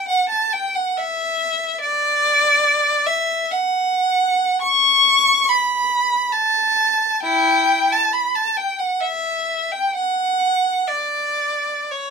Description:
classical, free, expressive piece for unaccompanied violin; 50-73 BPM; 3/4; rubato; D major; A4 = 440 Hz
rich violin; solo; 0.0-12.1 s; E4 to C#6; -16 LUFS; equal
light reverb; minimal, uncompressed stereo recording; -16 LUFS; side -5 dB against mid
0.0-12.1 A section
0.07 0.95 | 1.81 2.64 3.52 | 4.59 5.50 6.33 | 7.22 8.12 9.03 | 9.95 10.86 11.91

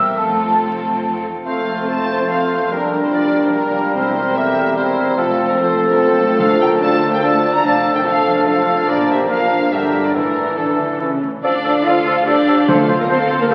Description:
quick classical-period movement for symphony orchestra; 145 BPM; 3/4; straight; F major, D minor from 6.4 s; A4 = 440 Hz
warm studio violin section; melody; 0.0-13.5 s; A4 to Bb5; -26 LUFS; equal
mellow flute section; second line; 0.0-13.5 s; C4 to E6; -26 LUFS; equal
rich studio violin section; second line; 0.0-13.5 s; A3 to F5; -29 LUFS; equal
rich symphonic viola section; accompaniment; 0.0-13.5 s; D3 to A4; -27 LUFS; equal
rich studio cello section; bass; 0.0-13.5 s; D2 to F4; -27 LUFS; equal
rich studio double bass section; bass; 0.0-13.5 s; E1 to D2; -34 LUFS; equal
warm clarinet; second line; 1.5-13.5 s; C4 to F5; -25 LUFS; equal
warm oboe; second line; 1.5-13.5 s; A4 to C5; -24 LUFS; equal
warm bassoon; accompaniment; 1.5-13.5 s; D3 to A3; -23 LUFS; equal
clear French horn section; sustained chords; 1.5-13.5 s; D4 to F5; -27 LUFS; equal
timpani; percussion; 6.4-7.0, 12.7-13.3 s; D3; -27 LUFS; equal
wet scoring stage reverb, RT60 1.8 s; very old 78 rpm record, vinyl crackle; -16 LUFS; mono
0.0-1.5 A section; 1.5-11.4 A section; 11.4-13.5 B section
0.2 F; 2.7 Gm7/F; 3.9 C7/E; 5.2 F; 6.4 Dm; 7.6 Dm/F; 8.9 Bb; 9.7 Gm; 10.1 Asus4; 11.0 A; 11.4 Dm; 12.7 F/D
| 0.18 0.61 1.03 | 1.46 1.89 2.30 | 2.71 3.13 3.54 | 3.95 4.36 4.77 | 5.18 5.58 5.99 | 6.40 6.82 7.23 | 7.64 8.05 8.47 | 8.89 9.30 9.72 | 10.15 10.58 11.01 | 11.44 11.86 12.27 | 12.69 13.10 13.51

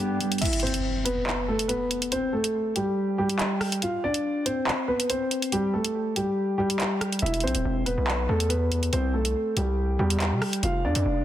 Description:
hip hop, drill; 141 BPM; 4/4; half-time; E phrygian; A4 = 439 Hz
dark concert grand piano; melody; 0.0-11.2 s; G3 to F5; -26 LUFS; equal; low-pass filter, tape echo
drill drum kit; drums; 0.2-11.0 s; crash cymbal, handclaps, hi-hat, rim click; -29 LUFS; equal
impact and riser; sound effects; 0.4-2.1, 11.1-11.2 s; -32 LUFS; equal
distorted 808-style bass; bass; 7.2-11.2 s; D1 to C3; -26 LUFS; equal; distortion
light reverb; dense, heavily limited modern master; -23 LUFS; side -12 dB against mid
0.4-11.2 A section
kick muted 0.4-7.2; impact 0.4-2.1
0.4 E5; 2.1 C5; 3.8 F5; 5.5 Gsus2; 7.2 E5; 8.9 C; 10.6 F5
| 0.42 0.84 1.27 1.69 | 2.12 2.54 2.97 3.40 | 3.82 4.25 4.67 5.10 | 5.52 5.95 6.37 6.80 | 7.22 7.65 8.08 8.50 | 8.93 9.35 9.78 10.20 | 10.63 11.05

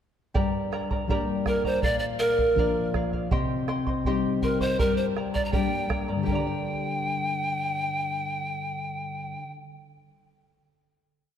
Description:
andean folk, Andean ensemble; 81 BPM; 2/4; straight; G minor; A4 = 439 Hz
charango; accompaniment; 0.3-9.9 s; G4 to C6; -32 LUFS; right 2 dB
nylon-string guitar; accompaniment; 0.3-9.7 s; G2 to D5; -29 LUFS; left 4 dB
bombo; percussion; 0.4-6.6 s; -30 LUFS; right 2 dB
breathy bright pan flute; melody; 1.5-9.5 s; Bb4 to Bb5; -27 LUFS; right 1 dB; slapback echo
wet concert hall reverb, RT60 2.1 s; dark, warm production; -24 LUFS; side -9 dB against mid
0.4-6.3 A section; 6.3-9.2 final chord
0.4 Gm; 1.8 Bb; 3.3 Cm; 4.8 Gm
| 0.36 1.10 | 1.84 2.58 | 3.32 4.06 | 4.80 5.54 | 6.28 7.01 | 7.75 8.48

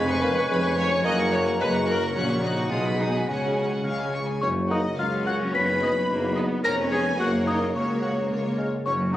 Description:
cinematic, playful, whimsical film cue; 108 BPM; 2/4; straight; F# major; A4 = 440 Hz
rich studio violin section; melody; 0.0-9.2 s; C#5 to F#6; -34 LUFS; left 1 dB
clear clarinet; second line; 0.0-9.2 s; C#4 to D#5; -30 LUFS; left 2 dB
clear oboe; second line; 0.0-9.2 s; C#5 to G#5; -35 LUFS; equal
hollow concert flute; second line; 0.0-9.2 s; C#5 to C#6; -35 LUFS; equal
rich studio violin section; second line; 0.0-9.2 s; C#5 to C#6; -37 LUFS; left 1 dB
dark bassoon; accompaniment; 0.0-9.2 s; F#3 to C#4; -32 LUFS; equal
warm studio viola section; accompaniment; 0.0-9.2 s; F#3 to D#5; -32 LUFS; equal
mellow French horn section; sustained chords; 0.0-9.2 s; G#3 to F#4; -34 LUFS; left 2 dB
concert harp; arpeggios; 0.0-9.2 s; E#2 to B5; -36 LUFS; left 4 dB
mellow tuba; bass; 0.0-9.2 s; E#1 to C#2; -29 LUFS; right 1 dB
rich studio cello section; bass; 0.0-9.2 s; E#2 to C#4; -30 LUFS; equal
rich studio double bass section; bass; 0.0-9.2 s; E#1 to F#2; -39 LUFS; right 1 dB
worn celesta; melody; 4.4-9.2 s; C#6 to B6; -29 LUFS; left 2 dB
moderate scoring stage reverb, RT60 1.9 s; recorded on a phone in the room, club reverb; -22 LUFS; side -13 dB against mid
0.0-4.4 A section; 4.4-9.2 B section
0.0 C#7/E#; 1.0 F#; 2.1 F#/A#; 2.7 G#m7/B; 3.3 C#sus4; 3.8 C#; 4.4 F#; 5.5 B/F#; 6.6 C#7/E#; 7.2 F#; 7.7 F#/C#; 8.3 C#
0.50 | 1.05 1.59 | 2.15 2.70 | 3.27 3.84 | 4.41 4.97 | 5.54 6.09 | 6.64 7.19 | 7.74 8.30 | 8.86

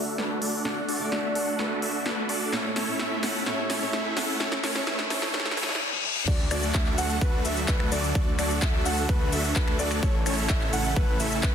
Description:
EDM, festival progressive house; 128 BPM; 4/4; straight; D major; A4 = 437 Hz
picked old ladder-braced acoustic guitar; accompaniment; 0.0-5.8 s; A2 to D5; -35 LUFS; right 1 dB; sidechain pumping, ping-pong delay
lush unison pad; sustained chords; 0.0-11.5 s; C#3 to F#5; -35 LUFS; left 1 dB; chorus, sidechain pumping
supersaw chords; riff; 0.0-11.5 s; A3 to F#5; -29 LUFS; right 1 dB; sidechain pumping, low-pass filter, ping-pong delay
riser and reverse cymbal; sound effects; 2.2-6.3 s; -34 LUFS; left 4 dB
big-room dance drum kit; drums; 0.2-11.5 s; cabasa, crash cymbal, finger snaps, handclaps, hi-hat, snare drum, toms; -30 LUFS; left 1 dB
dark concert grand piano; arpeggios; 6.3-11.5 s; B4 to F#5; -33 LUFS; equal; vintage 12-bit sampler grit, sidechain pumping, ping-pong delay
wide detuned saw bass; bass; 6.3-11.5 s; A1 to D2; -30 LUFS; equal; chorus, sidechain pumping
electronic kick drum; drums; 6.3-11.5 s; -25 LUFS; equal; overdrive
moderate lush hall reverb, RT60 1.9 s, digital ambience; dense, heavily limited modern master, high-pass filter; -24 LUFS; side -8 dB against mid
0.0-6.3 A section; 6.3-11.5 B section
build-up 0.0-6.3; drum fill 0.0-5.8, 5.9-6.3; filter sweep on supersaw synth 0.0-6.3; filter sweep 0.0-6.3; reverse cymbal 5.3-6.3; drop 6.3-11.5
0.0 D; 2.5 A; 6.3 D; 10.0 A
0.18 | 0.65 1.12 1.59 2.06 | 2.53 3.00 3.46 3.93 | 4.40 4.87 5.34 5.81 | 6.28 6.75 7.21 7.68 | 8.15 8.62 9.09 9.56 | 10.03 10.50 10.96 11.43

